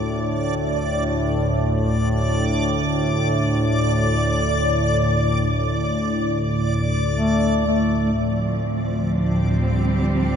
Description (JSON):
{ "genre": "dark ambient drone", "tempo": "free time", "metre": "none", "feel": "none", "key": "unclear", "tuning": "A4 = 440 Hz", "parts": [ { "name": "analog drone", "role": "drone", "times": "0.0-10.4 s", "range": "D2 to A2", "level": "-20 LUFS", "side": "equal", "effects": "chorus" }, { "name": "backwards swelling texture", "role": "texture", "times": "0.0-10.4 s", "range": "D5", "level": "-25 LUFS", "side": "equal", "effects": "built-in reverb" }, { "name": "mellow duduk", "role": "melody", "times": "7.2-10.4 s", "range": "A3 to D4", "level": "-23 LUFS", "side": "left 2 dB", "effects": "tape echo" }, { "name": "warm symphonic cello section", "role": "sustained chords", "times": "8.2-10.4 s", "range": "F3 to C4", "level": "-23 LUFS", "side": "right 1 dB", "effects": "none" } ], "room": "wet huge ambient reverb, RT60 7.9 s", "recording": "nothing above 10.8 kHz", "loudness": "-18 LUFS", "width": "side -7 dB against mid", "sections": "0.0-8.2 A section; 8.2-10.4 B section", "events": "filter sweep on synth drone 8.2-10.4", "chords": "0.0 D5; 8.2 Fadd9/D", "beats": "free time" }